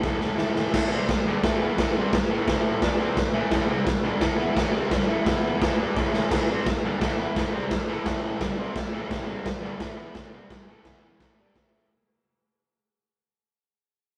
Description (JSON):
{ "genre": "garage rock duo or trio", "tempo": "172 BPM", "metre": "4/4", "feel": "straight", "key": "A minor", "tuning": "A4 = 440 Hz", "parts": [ { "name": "fuzz guitar", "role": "riff", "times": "0.0-11.9 s", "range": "G2 to G4", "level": "-30 LUFS", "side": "equal", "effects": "distortion" }, { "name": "raw garage drum kit", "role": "drums", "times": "0.0-11.6 s", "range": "crash cymbal, kick drum, snare drum", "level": "-27 LUFS", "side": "equal", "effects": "none" } ], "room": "light reverb", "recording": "rough rehearsal-room recording", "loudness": "-25 LUFS", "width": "mono", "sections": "0.7-6.3 A section; 6.3-11.9 A section", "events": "drum fill 0.0-0.7, 6.0-6.3; fade-out 6.3-11.9", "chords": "0.0 A5; 0.7 Am; 5.3 E5; 5.6 A5; 6.3 Am; 10.9 E5; 11.2 A5", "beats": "0.03 0.38 | 0.73 1.08 1.43 1.78 | 2.13 2.47 2.82 3.17 | 3.52 3.87 4.22 4.57 | 4.92 5.27 5.62 5.97 | 6.32 6.67 7.02 7.37 | 7.72 8.07 8.42 8.77 | 9.12 9.46 9.81 10.16 | 10.51 10.86 11.21 11.56" }